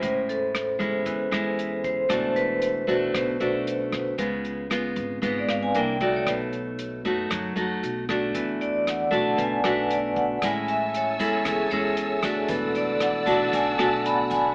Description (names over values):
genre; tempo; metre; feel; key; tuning
bossa nova; 116 BPM; 4/4; straight; A major; A4 = 438 Hz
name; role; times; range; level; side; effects
nylon-string guitar; accompaniment; 0.0-14.5 s; G#2 to F#4; -29 LUFS; equal; none
vibraphone with medium hard mallets; accompaniment; 0.0-14.5 s; G#4 to B5; -28 LUFS; equal; none
upright bass; bass; 0.0-14.5 s; E1 to F#2; -40 LUFS; equal; none
open jazz drum kit; drums; 0.0-14.4 s; hi-hat, kick drum, rim click; -36 LUFS; equal; none
warm symphonic string section; sustained chords; 10.4-14.5 s; C#5 to E6; -34 LUFS; equal; none
tube shaker; percussion; 10.4-14.5 s; none; -51 LUFS; equal; none
room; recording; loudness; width
moderate studio reverb, RT60 0.8 s; AM radio sound; -25 LUFS; mono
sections
0.0-14.5 A section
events
vibraphone solo 0.0-14.5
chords
0.0 Amaj7; 2.1 E9sus4; 4.2 C#7; 5.7 C9; 6.3 B7; 8.3 E9sus4; 10.4 Amaj7; 12.5 E9sus4